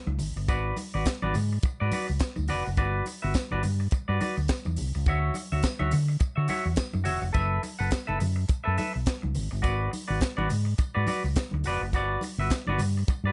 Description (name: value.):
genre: disco.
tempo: 105 BPM.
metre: 4/4.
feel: swing 56% on 16ths.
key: unclear.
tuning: A4 = 440 Hz.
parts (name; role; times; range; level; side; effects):
clean electric guitar; accompaniment; 0.1-13.3 s; F#4 to F#5; -33 LUFS; equal; subtle chorus.
fingered electric bass; bass; 0.1-13.3 s; E1 to D3; -30 LUFS; equal; none.
congas; percussion; 0.1-13.2 s; none; -39 LUFS; equal; none.
tight funk drum kit; drums; 0.2-13.2 s; handclaps, hi-hat, kick drum, snare drum; -32 LUFS; equal; none.
tambourine; percussion; 0.2-13.2 s; none; -50 LUFS; equal; none.
room: light reverb.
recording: dark, warm production, nothing above 11.0 kHz.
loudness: -28 LUFS.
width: mono.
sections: 0.0-13.3 A section.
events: none.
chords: 0.2 G#m7b5; 2.8 Gmaj7; 5.1 Dmaj9; 7.4 F#m7; 9.4 G#m7b5; 11.9 Gmaj7.